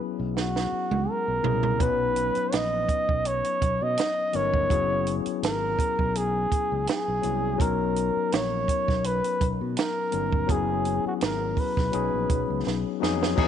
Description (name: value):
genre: lush 1970s-style soul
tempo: 83 BPM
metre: 4/4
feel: swing 54% on 16ths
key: B major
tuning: A4 = 439 Hz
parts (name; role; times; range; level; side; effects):
- overdriven tine electric piano; accompaniment; 0.0-13.5 s; F#3 to B4; -30 LUFS; left 15 dB; none
- fingered electric bass; bass; 0.2-13.5 s; F#1 to B2; -31 LUFS; right 1 dB; none
- breathy flugelhorn; melody; 0.4-12.7 s; F#4 to D#5; -27 LUFS; right 1 dB; none
- compact cocktail drum kit; drums; 0.4-13.5 s; crash cymbal, hi-hat, kick drum, snare drum, toms; -28 LUFS; right 4 dB; none
room: light reverb, studio ambience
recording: 1960s-style stereo, nothing above 10.6 kHz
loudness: -23 LUFS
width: side -9 dB against mid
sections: 0.0-13.4 A section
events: drum fill 0.4-1.8, 12.7-13.4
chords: 0.0 F#9sus4; 1.8 Bmaj7; 4.7 F#9sus4; 7.6 Bmaj7; 10.5 F#9sus4; 11.9 B6